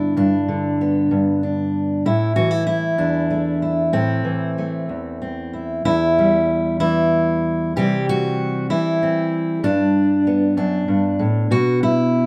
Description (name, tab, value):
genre	folk, solo fingerstyle acoustic guitar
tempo	64 BPM (dotted quarters)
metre	6/8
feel	straight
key	A dorian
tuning	A4 = 440 Hz
part	fingerpicked steel-string acoustic guitar	solo	0.0-12.3 s	E2 to G4	-19 LUFS	equal	none
room	light reverb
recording	none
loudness	-19 LUFS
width	mono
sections	0.0-5.8 A section; 5.8-12.3 B section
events	none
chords	0.0 G; 2.1 Am; 5.8 Em; 7.8 C; 9.6 G; 11.5 B5